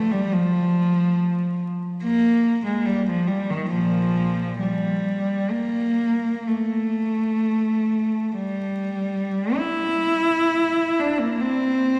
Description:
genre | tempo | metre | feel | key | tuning
classical, free, expressive piece for unaccompanied cello | 43-74 BPM | 4/4 | rubato | F major | A4 = 441 Hz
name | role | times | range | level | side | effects
warm cello | solo | 0.0-12.0 s | Bb2 to E4 | -22 LUFS | equal | none
room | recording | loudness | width
wet church reverb, RT60 3.0 s | vinyl crackle | -23 LUFS | mono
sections
0.0-12.0 A section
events
none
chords
none

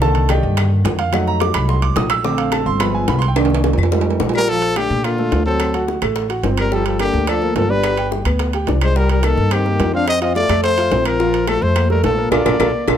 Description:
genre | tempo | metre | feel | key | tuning
Afro-Cuban jazz | 215 BPM | 4/4 | straight | Bb major | A4 = 441 Hz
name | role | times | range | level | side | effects
warm concert grand piano | accompaniment | 0.0-13.0 s | D3 to E6 | -20 LUFS | right 2 dB | none
upright bass | bass | 0.0-13.0 s | G1 to Bb2 | -19 LUFS | equal | none
bongos | percussion | 0.0-12.9 s | none | -26 LUFS | left 7 dB | none
timbales | percussion | 0.1-12.9 s | none | -24 LUFS | right 8 dB | none
claves | percussion | 0.3-12.9 s | none | -30 LUFS | left 10 dB | none
warm trumpet | melody | 4.4-13.0 s | F4 to F5 | -20 LUFS | left 1 dB | none
mellow trombone | second line | 4.4-13.0 s | D3 to D4 | -23 LUFS | left 8 dB | none
room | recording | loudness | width
light reverb | close, detailed microphones | -14 LUFS | side -9 dB against mid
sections
0.0-4.5 A section; 4.5-13.0 B section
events
grand piano solo 0.0-4.5; drum fill 3.4-4.5, 12.6-13.0; band accent 12.3-13.0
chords
0.0 Cm9; 1.1 F7b9; 2.2 Bbmaj7; 2.8 G7b9; 3.4 Cm7; 3.9 F7; 4.5 Bbmaj7; 5.6 D7; 6.7 Gm9; 7.8 G; 9.0 Cm7; 10.1 F; 11.2 Bbmaj7

